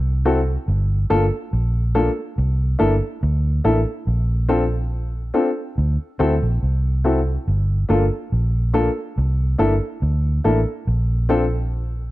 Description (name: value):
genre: lovers rock reggae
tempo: 71 BPM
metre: 4/4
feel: straight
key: G dorian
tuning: A4 = 440 Hz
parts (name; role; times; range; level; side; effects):
- vintage muted fingered electric bass; bass; 0.0-12.1 s; G1 to D2; -19 LUFS; equal; none
- dark baby grand piano; accompaniment; 0.3-11.4 s; Bb3 to A4; -21 LUFS; left 2 dB; none
room: light reverb, small room ambience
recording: none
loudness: -18 LUFS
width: side -17 dB against mid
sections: 0.0-12.1 A section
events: none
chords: 0.0 D7 (rootless); 0.7 Gm7; 2.4 C13; 4.1 Bbmaj7; 5.8 D7; 7.5 Gm7; 9.2 C13; 10.9 N.C.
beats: | 0.67 1.52 2.37 3.22 | 4.07 4.92 5.77 6.62 | 7.47 8.32 9.17 10.02 | 10.87 11.71